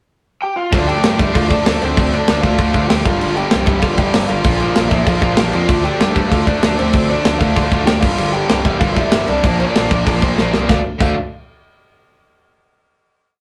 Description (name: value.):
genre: punk rock.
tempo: 193 BPM.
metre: 4/4.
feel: straight.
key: D minor.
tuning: A4 = 440 Hz.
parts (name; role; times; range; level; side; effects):
lead guitar through a small cranked amp; melody; 0.4-11.2 s; C4 to G5; -23 LUFS; equal; overdrive.
crunchy overdriven guitar; riff; 0.7-11.1 s; G2 to D4; -25 LUFS; equal; none.
distorted electric guitar; riff; 0.7-11.1 s; G2 to D4; -26 LUFS; equal; overdrive.
distorted electric guitar; riff; 0.7-11.1 s; G2 to D4; -26 LUFS; equal; overdrive.
fuzz picked electric bass; bass; 0.7-11.2 s; G1 to G2; -23 LUFS; equal; overdrive.
tight metal drum kit; drums; 0.7-11.1 s; crash cymbal, kick drum, snare drum; -19 LUFS; equal; vintage 12-bit sampler grit.
room: wet small room reverb, RT60 0.5 s.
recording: rough rehearsal-room recording.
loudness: -15 LUFS.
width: mono.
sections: 0.0-0.7 pickup bar; 0.7-10.7 chorus; 10.7-11.9 final chord.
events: drum fill 10.4-10.7.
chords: 0.0 Fsus2; 0.7 Dm; 3.1 Gm; 4.5 Bb; 5.7 Dm; 8.0 Gm; 9.4 Bb; 10.7 Dm.